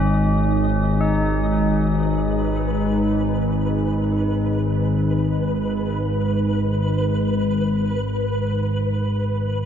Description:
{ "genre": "ambient", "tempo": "free time", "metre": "none", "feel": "none", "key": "G# minor", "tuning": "A4 = 438 Hz", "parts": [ { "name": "sweeping resonant pad", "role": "sustained chords", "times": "0.0-9.7 s", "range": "D#3 to D#4", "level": "-26 LUFS", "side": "equal", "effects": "chorus" }, { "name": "tubular bells", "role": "arpeggios", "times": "0.0-9.7 s", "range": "C#4 to G#4", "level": "-30 LUFS", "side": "left 2 dB", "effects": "ping-pong delay" }, { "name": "analog drone", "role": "drone", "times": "0.0-9.7 s", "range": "G#1 to G#2", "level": "-20 LUFS", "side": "equal", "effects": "chorus" }, { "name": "flickering grainy texture", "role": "texture", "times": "0.0-9.7 s", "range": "B4 to D#5", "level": "-29 LUFS", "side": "left 1 dB", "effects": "built-in reverb" } ], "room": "wet huge ambient reverb, RT60 8.9 s", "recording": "dark, warm production", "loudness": "-18 LUFS", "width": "side -8 dB against mid", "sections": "0.0-9.7 A section", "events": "fade-out 7.3-9.7", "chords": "0.0 G#5" }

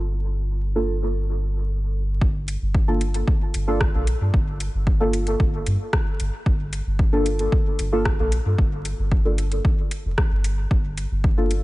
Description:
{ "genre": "dub techno", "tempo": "113 BPM", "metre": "4/4", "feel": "straight", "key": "G minor", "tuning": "A4 = 439 Hz", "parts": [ { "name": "soft dub sub bass", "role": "bass", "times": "0.0-11.6 s", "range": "F1 to G2", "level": "-24 LUFS", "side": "equal", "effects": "sidechain pumping" }, { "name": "deep mellow chord stab", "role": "stabs", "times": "0.8-11.5 s", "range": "Bb3 to A4", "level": "-26 LUFS", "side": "equal", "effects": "chorus, phaser, cassette tape, sidechain pumping, dub echo" }, { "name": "electronic kick drum", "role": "drums", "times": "2.2-11.3 s", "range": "none", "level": "-21 LUFS", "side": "equal", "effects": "overdrive, studio reverb" }, { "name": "deep house drum kit", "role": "drums", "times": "2.5-11.6 s", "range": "hi-hat, rim click", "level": "-31 LUFS", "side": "equal", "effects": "overdrive, studio reverb" } ], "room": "digital ambience", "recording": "vinyl crackle, nothing above 10.8 kHz", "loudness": "-20 LUFS", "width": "side -19 dB against mid", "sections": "0.0-2.2 A section; 2.2-11.6 B section", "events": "none", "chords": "0.0 Gm7" }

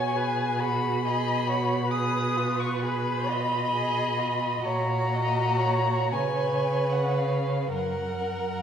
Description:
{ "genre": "classical, slow romantic movement for string quartet", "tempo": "34-46 BPM (dotted quarters)", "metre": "6/8", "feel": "rubato", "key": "F# major", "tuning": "A4 = 442 Hz", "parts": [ { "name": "rich violin", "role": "melody", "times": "0.0-8.6 s", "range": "E#5 to D#6", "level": "-28 LUFS", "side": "left 4 dB", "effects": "none" }, { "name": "clear violin", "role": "second line", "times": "0.0-8.6 s", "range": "E#4 to B4", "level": "-32 LUFS", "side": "right 1 dB", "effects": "none" }, { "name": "rich viola", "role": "accompaniment", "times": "0.0-8.6 s", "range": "G#4 to D#5", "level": "-32 LUFS", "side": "right 3 dB", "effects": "none" }, { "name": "clear cello", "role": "bass", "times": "0.0-8.6 s", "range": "F#2 to C#3", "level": "-29 LUFS", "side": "right 2 dB", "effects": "none" } ], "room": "wet recital hall reverb, RT60 1.7 s", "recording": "heard from further back in the room", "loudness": "-24 LUFS", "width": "side -8 dB against mid", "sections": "0.0-8.6 A section", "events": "none", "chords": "0.0 G#m7/B; 1.9 B6; 4.7 F#/A#; 6.1 C#5; 7.8 F#" }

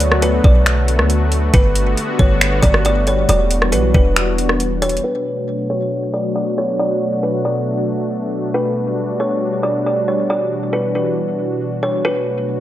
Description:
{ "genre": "hip hop, atmospheric cloud-rap", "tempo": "137 BPM", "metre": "4/4", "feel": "half-time", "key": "B minor", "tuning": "A4 = 440 Hz", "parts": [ { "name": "kalimba", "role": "melody", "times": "0.0-12.6 s", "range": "B4 to D5", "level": "-20 LUFS", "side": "equal", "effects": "low-pass filter, tape echo" }, { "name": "warm analog pad", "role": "sustained chords", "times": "0.0-12.6 s", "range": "B2 to F#4", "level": "-20 LUFS", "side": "left 1 dB", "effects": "chorus, sidechain pumping, low-pass filter" }, { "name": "warm 808-style bass", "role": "bass", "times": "0.0-5.0 s", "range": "E1 to D2", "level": "-17 LUFS", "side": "equal", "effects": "none" }, { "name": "smooth R&B drum kit", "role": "drums", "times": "0.0-5.0 s", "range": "finger snaps, hi-hat, kick drum, rim click", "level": "-15 LUFS", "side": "equal", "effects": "none" } ], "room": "light reverb, digital ambience", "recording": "none", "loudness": "-14 LUFS", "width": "side -13 dB against mid", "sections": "0.0-5.0 A section; 5.0-12.6 B section", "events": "filter sweep 5.0-12.6", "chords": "0.0 Bm7; 1.5 Gmaj9; 3.3 Em9; 5.0 Bm7; 8.5 Gmaj9; 10.3 Em9; 12.0 Bm7" }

